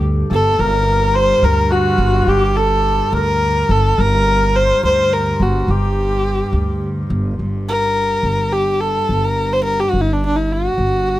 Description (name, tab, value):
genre	Persian modal ensemble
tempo	70 BPM (dotted quarters)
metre	6/8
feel	straight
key	G avaz esfahan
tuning	A4 = 439 Hz
part	rich kamancheh	melody	0.0-11.2 s	D4 to C5	-16 LUFS	equal	none
part	santur	second line	0.0-8.8 s	F#4 to C5	-24 LUFS	equal	none
part	upright bass	bass	0.0-11.2 s	G1 to D2	-19 LUFS	equal	none
part	clear cello	drone	0.0-11.2 s	G2	-24 LUFS	right 1 dB	none
room	light reverb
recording	none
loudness	-14 LUFS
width	side -15 dB against mid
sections	0.0-7.4 A section; 7.4-11.2 B section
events	none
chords	none